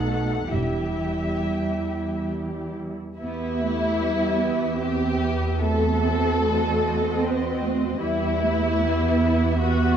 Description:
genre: classical, slow romantic movement for string orchestra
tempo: 65-79 BPM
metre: 3/4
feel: rubato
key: E minor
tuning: A4 = 435 Hz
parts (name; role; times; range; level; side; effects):
- muted studio violin section; melody; 0.0-10.0 s; D#5 to F#5; -34 LUFS; left 4 dB; none
- muted studio violin section; second line; 0.0-10.0 s; C4 to A4; -26 LUFS; left 2 dB; none
- muted chamber viola section; accompaniment; 0.0-10.0 s; G3 to G4; -28 LUFS; right 3 dB; none
- muted chamber cello section; bass; 0.0-10.0 s; E2 to C4; -28 LUFS; right 3 dB; none
- muted symphonic double bass section; bass; 0.0-10.0 s; E1 to E2; -27 LUFS; right 2 dB; none
room: moderate recital hall reverb, RT60 1.3 s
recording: dark, warm production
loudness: -21 LUFS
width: side -8 dB against mid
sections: 0.0-3.2 A section; 3.2-10.0 A section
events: none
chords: 0.0 B7; 0.5 Em; 5.6 B7b9/E; 8.0 Em

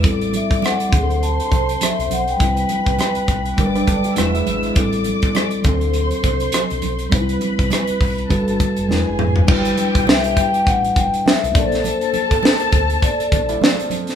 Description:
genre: lush 1970s-style soul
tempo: 102 BPM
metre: 4/4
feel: swing 58% on 16ths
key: unclear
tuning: A4 = 441 Hz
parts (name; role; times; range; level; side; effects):
- muted symphonic string section; second line; 0.0-13.9 s; G4 to E6; -24 LUFS; equal; none
- mellow tine electric piano; accompaniment; 0.0-14.2 s; F#3 to C5; -22 LUFS; left 1 dB; slow stereo tremolo
- hollow-body short-scale fingered electric bass; bass; 0.0-13.5 s; E1 to D2; -24 LUFS; equal; none
- tight funk drum kit; drums; 0.0-14.2 s; crash cymbal, hi-hat, kick drum, rim click, snare drum, toms; -18 LUFS; equal; none
- congas; percussion; 0.0-14.1 s; none; -29 LUFS; right 8 dB; none
- vibraphone with soft mallets; melody; 0.4-4.0, 10.1-13.9 s; Bb4 to A5; -22 LUFS; left 4 dB; none
- electric guitar through a small old amp; riff; 3.8-4.7, 13.5-14.2 s; G3 to B4; -27 LUFS; right 4 dB; none
room: moderate large studio reverb, RT60 1.5 s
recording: band playing live in one room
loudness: -15 LUFS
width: side -8 dB against mid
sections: 0.0-9.5 A section; 9.5-14.2 B section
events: drum fill 8.9-9.5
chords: 0.0 Am7; 0.9 D7; 2.4 Cmaj7; 3.6 Gmaj7; 4.2 E7; 4.8 Am7; 5.6 D7; 7.1 Cmaj7; 8.3 Gmaj7; 8.9 E7; 9.5 G6; 11.5 Bbmaj9

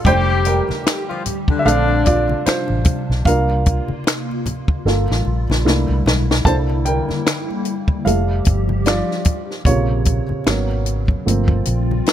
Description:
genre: R&B, neo-soul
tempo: 75 BPM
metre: 4/4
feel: swing 60% on 16ths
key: unclear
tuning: A4 = 441 Hz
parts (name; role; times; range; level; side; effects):
- dark baby grand piano; accompaniment; 0.0-12.1 s; C3 to A5; -21 LUFS; right 3 dB; none
- hollow soft pad; sustained chords; 0.0-12.1 s; Bb2 to Db5; -26 LUFS; left 1 dB; ensemble chorus
- mellow horn section; stabs; 0.0-2.4 s; D3 to G4; -21 LUFS; left 5 dB; none
- compact cocktail drum kit; drums; 0.0-12.1 s; finger snaps, hi-hat, kick drum, snare drum; -18 LUFS; left 1 dB; none
- vintage muted fingered electric bass; bass; 0.1-12.0 s; F1 to C2; -19 LUFS; equal; none
- congas; percussion; 0.1-12.1 s; none; -29 LUFS; left 2 dB; none
room: little or no reverb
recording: none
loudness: -15 LUFS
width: side -10 dB against mid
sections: 0.0-6.5 A section; 6.5-12.1 B section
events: grand piano solo 0.0-6.5, 6.5-12.1; drum fill 4.9-6.5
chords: 0.1 F69; 1.7 Bbmaj9; 3.3 C7sus4; 4.9 Gm9; 5.7 C13; 8.1 Fmaj9; 9.7 Bbmadd9; 10.5 Abm11; 11.3 Gm11

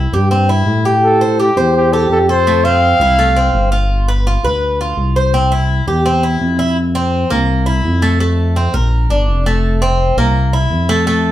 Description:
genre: latin, Cuban son and guajira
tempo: 167 BPM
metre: 4/4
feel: straight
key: F major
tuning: A4 = 438 Hz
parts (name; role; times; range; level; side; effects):
- Cuban tres; arpeggios; 0.0-11.3 s; A3 to C5; -16 LUFS; equal; none
- smooth gliding synth bass; bass; 0.0-11.3 s; F1 to A2; -14 LUFS; equal; none
- breathy trumpet; melody; 1.0-3.7 s; G4 to F5; -14 LUFS; equal; none
room: wet studio reverb, RT60 0.8 s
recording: heard from further back in the room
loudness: -11 LUFS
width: side -13 dB against mid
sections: 0.0-6.8 A section; 6.8-11.3 B section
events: none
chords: 0.0 C; 1.0 Am7; 2.5 F; 3.9 G7; 5.3 C; 6.8 F5; 7.5 C7; 8.2 F; 8.9 Bbmaj7; 9.6 F; 10.4 C7

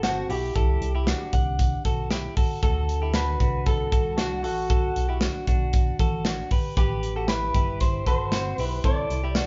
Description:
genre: jangly indie pop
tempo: 116 BPM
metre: 4/4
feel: straight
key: D mixolydian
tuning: A4 = 440 Hz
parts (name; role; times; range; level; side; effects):
- electric guitar through a small old amp; melody; 0.0-9.5 s; F#4 to D5; -32 LUFS; equal; spring reverb
- direct-recorded clean electric guitar; arpeggios; 0.0-9.5 s; C4 to F#5; -34 LUFS; equal; none
- chorused synth bass; bass; 0.0-9.4 s; G1 to D2; -31 LUFS; equal; none
- modern studio drum kit; drums; 0.0-9.5 s; hi-hat, kick drum, snare drum; -27 LUFS; equal; none
room: moderate studio reverb, RT60 0.8 s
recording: band playing live in one room, nothing above 7.5 kHz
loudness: -25 LUFS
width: mono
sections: 0.0-9.5 A section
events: none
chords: 0.0 Am7 (rootless); 0.6 Cadd9; 2.6 D; 4.7 Bm; 6.8 Am7; 8.8 Cadd9

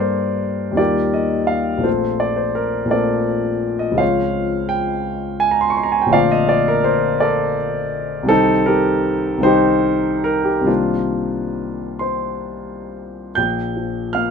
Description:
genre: classical, impressionist solo piano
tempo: 43-58 BPM (dotted quarters)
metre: 6/8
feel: rubato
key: Bb major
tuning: A4 = 440 Hz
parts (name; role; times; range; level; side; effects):
- warm baby grand piano; solo; 0.0-14.3 s; Bb1 to G6; -16 LUFS; equal; none
room: light reverb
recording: none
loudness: -16 LUFS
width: side -6 dB against mid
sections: 0.0-13.4 A section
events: none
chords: 0.0 Gmadd9; 0.8 Ebadd9; 1.9 Bbmaj9; 4.0 Dbmaj7; 6.1 Bbmaj9; 8.3 Cm7; 10.7 Cm11; 13.4 Bb5

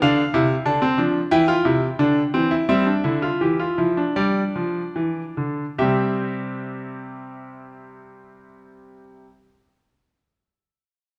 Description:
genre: classical, baroque-style 3-part fugue for grand piano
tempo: 69-94 BPM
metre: 4/4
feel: straight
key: C major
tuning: A4 = 439 Hz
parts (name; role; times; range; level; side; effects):
- clear concert grand piano; solo; 0.0-9.3 s; C3 to A5; -22 LUFS; equal; none
room: wet recital hall reverb, RT60 1.4 s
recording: dark, warm production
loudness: -21 LUFS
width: mono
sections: 0.0-5.8 A section; 5.8-9.2 B section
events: slowing down 0.0-5.8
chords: 0.0 Dm9/C; 1.3 C; 4.2 G5; 5.8 C

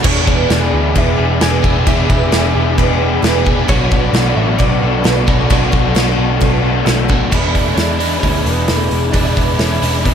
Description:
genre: rock, shoegaze and dream pop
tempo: 132 BPM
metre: 4/4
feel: straight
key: E mixolydian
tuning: A4 = 441 Hz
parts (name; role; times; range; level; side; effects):
- dark analog pad; sustained chords; 0.0-10.1 s; G#4 to D6; -26 LUFS; left 2 dB; chorus
- picked twelve-string acoustic guitar; arpeggios; 0.0-10.1 s; G#4 to D5; -25 LUFS; right 12 dB; analog chorus, slapback echo
- overdriven electric guitar; riff; 0.0-10.1 s; E2 to G#4; -22 LUFS; right 12 dB; reverse reverb
- overdriven electric guitar; riff; 0.0-10.1 s; B2 to B4; -21 LUFS; equal; none
- overdriven semi-hollow guitar; riff; 0.0-10.1 s; E2 to G#4; -20 LUFS; left 11 dB; wide subtle chorus
- vintage muted picked electric bass; bass; 0.0-10.1 s; E1 to E2; -17 LUFS; equal; none
- loose indie drum kit; drums; 0.0-10.1 s; crash cymbal, hi-hat, kick drum, snare drum; -16 LUFS; equal; none
- direct-recorded clean electric guitar; melody; 0.1-10.1 s; A3 to G#5; -24 LUFS; equal; wide subtle chorus, slapback echo
room: small room reverb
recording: none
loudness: -11 LUFS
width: side -8 dB against mid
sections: 0.0-7.3 A section; 7.3-10.1 B section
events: none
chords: 0.0 E7; 3.7 Bm9; 7.3 E7

